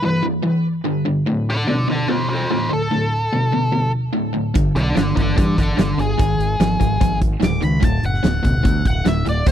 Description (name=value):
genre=blues rock power trio and southern rock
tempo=146 BPM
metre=4/4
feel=straight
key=D mixolydian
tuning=A4 = 441 Hz
part: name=octave-fuzz lead guitar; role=melody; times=0.0-9.5 s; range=G#4 to D6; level=-23 LUFS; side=equal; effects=wah, distortion, tape echo
part: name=cranked stack guitar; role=riff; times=0.0-9.5 s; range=D2 to F3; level=-20 LUFS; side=equal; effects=overdrive
part: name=growling fingered electric bass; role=bass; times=4.6-9.5 s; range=D1 to G2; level=-21 LUFS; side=equal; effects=overdrive
part: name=big rock drum kit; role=drums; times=4.6-9.5 s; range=hi-hat, kick drum, snare drum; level=-20 LUFS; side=equal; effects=none
room=little or no reverb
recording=dry, close 1970s-style studio recording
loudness=-16 LUFS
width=side -10 dB against mid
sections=0.0-9.5 A section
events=none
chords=0.0 G5; 1.3 D5; 4.5 G5; 6.2 G#5; 7.8 D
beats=0.03 0.44 0.85 | 1.26 1.68 2.08 2.50 | 2.91 3.32 3.73 4.14 | 4.55 4.96 5.37 5.78 | 6.19 6.60 7.01 7.42 | 7.83 8.24 8.65 9.06 | 9.47